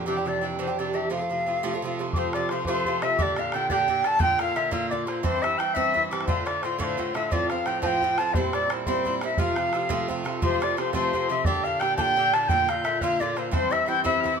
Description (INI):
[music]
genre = celtic folk, Celtic jig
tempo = 116 BPM (dotted quarters)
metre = 6/8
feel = straight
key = F major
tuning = A4 = 436 Hz
[part]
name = Irish bouzouki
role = accompaniment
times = 0.0-14.4 s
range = G2 to G4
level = -28 LUFS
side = right 3 dB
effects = none
[part]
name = rich cello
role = drone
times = 0.0-2.2 s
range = F2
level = -39 LUFS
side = left 2 dB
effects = none
[part]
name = bright wooden flute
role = melody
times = 0.1-14.3 s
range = G4 to A5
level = -26 LUFS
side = left 1 dB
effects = plate reverb
[part]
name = mellow wooden whistle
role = second line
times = 2.1-14.4 s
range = C6 to A6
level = -30 LUFS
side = left 6 dB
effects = none
[part]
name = bodhran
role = percussion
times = 2.1-14.3 s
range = none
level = -31 LUFS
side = equal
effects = none
[sound]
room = moderate studio reverb, RT60 0.5 s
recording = none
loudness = -22 LUFS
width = side -6 dB against mid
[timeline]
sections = 0.0-2.1 A section; 2.1-10.4 B section; 10.4-14.4 B section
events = none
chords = 0.1 Cadd9; 1.1 F; 3.2 Gm; 4.2 Bb; 5.2 C; 6.3 Dm; 7.3 F; 8.3 C7; 9.4 F; 11.5 Gm; 12.5 Bb; 13.5 C